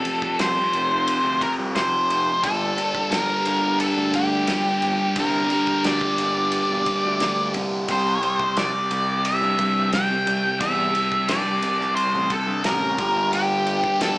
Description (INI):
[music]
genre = psychedelic rock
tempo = 88 BPM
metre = 4/4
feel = straight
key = G dorian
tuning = A4 = 440 Hz
[part]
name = octave-fuzz lead guitar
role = melody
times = 0.0-14.2 s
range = G4 to G5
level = -22 LUFS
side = equal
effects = distortion
[part]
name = overdriven combo organ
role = sustained chords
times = 0.0-14.2 s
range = E3 to A5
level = -32 LUFS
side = right 2 dB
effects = none
[part]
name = thick fuzz guitar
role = riff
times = 0.0-14.2 s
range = F2 to C4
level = -25 LUFS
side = equal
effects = distortion, phaser
[part]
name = damped 70s drum kit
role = drums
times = 0.1-14.2 s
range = kick drum, ride cymbal, snare drum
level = -30 LUFS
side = equal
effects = none
[part]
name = fuzz picked electric bass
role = bass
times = 0.4-14.1 s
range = E1 to G2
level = -30 LUFS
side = equal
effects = overdrive
[sound]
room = wet large studio reverb, RT60 1.2 s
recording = band playing live in one room, small speaker sound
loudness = -19 LUFS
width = side -22 dB against mid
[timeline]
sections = 0.0-14.2 A section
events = none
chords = 0.0 F5; 2.4 Gm; 7.9 C; 13.0 Gm